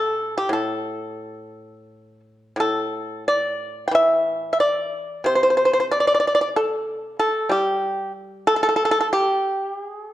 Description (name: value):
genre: chinese traditional, Chinese solo plucked strings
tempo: 85-95 BPM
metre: 4/4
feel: rubato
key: A yu mode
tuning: A4 = 439 Hz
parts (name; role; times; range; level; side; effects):
- pipa; solo; 0.0-10.1 s; A2 to G5; -19 LUFS; equal; none
room: moderate recital hall reverb, RT60 1.4 s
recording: dark, warm production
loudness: -19 LUFS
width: side -13 dB against mid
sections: 0.0-10.1 A section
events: none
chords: none